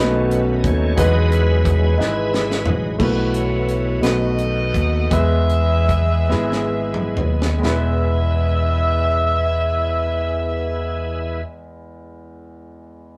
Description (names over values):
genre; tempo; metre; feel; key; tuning
slow gospel; 42-59 BPM (dotted quarters); 6/8; straight; E major; A4 = 439 Hz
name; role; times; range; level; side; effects
clear concert grand piano; accompaniment; 0.0-13.2 s; E2 to B4; -26 LUFS; equal; none
bright tonewheel organ; sustained chords; 0.0-11.4 s; D#3 to E5; -29 LUFS; equal; overdrive, chorus vibrato, slow rotary speaker
fingered electric bass; bass; 0.0-11.4 s; E1 to E2; -22 LUFS; equal; none
tight funk drum kit; drums; 0.3-7.9 s; crash cymbal, hi-hat, kick drum, snare drum, toms; -26 LUFS; equal; none
clear saxophone section; melody; 3.0-11.4 s; E4 to E5; -25 LUFS; equal; none
room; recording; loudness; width
light reverb; rough rehearsal-room recording, tube saturation; -19 LUFS; mono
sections
0.0-3.0 A section; 3.0-7.6 B section; 7.6-13.2 C section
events
tonewheel organ solo 0.0-3.0; drum fill 2.0-3.0, 6.3-7.6; slowing down 3.0-7.6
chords
0.0 B7; 1.0 Emaj7; 3.0 B7sus4; 4.0 B7; 5.1 Emaj7; 7.6 E